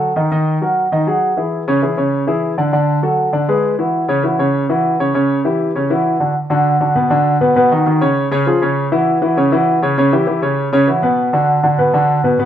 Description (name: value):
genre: jazz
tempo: 199 BPM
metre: 4/4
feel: straight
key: unclear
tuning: A4 = 440 Hz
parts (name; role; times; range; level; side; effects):
- warm grand piano; solo; 0.0-12.5 s; B2 to D#5; -13 LUFS; equal; none
room: moderate stone room reverb, RT60 1.0 s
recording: band playing live in one room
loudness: -13 LUFS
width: side -10 dB against mid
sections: 0.0-6.4 A section; 6.4-12.5 B section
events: none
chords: 0.3 D#m; 0.9 G#5; 1.5 C#m; 2.7 D; 3.3 E9; 3.9 C#madd11; 5.1 C#dim; 5.7 F#5; 6.4 Bm; 7.6 Badd9; 8.2 C#; 8.8 F#5; 10.0 C#dim; 10.6 F#5; 11.2 Bm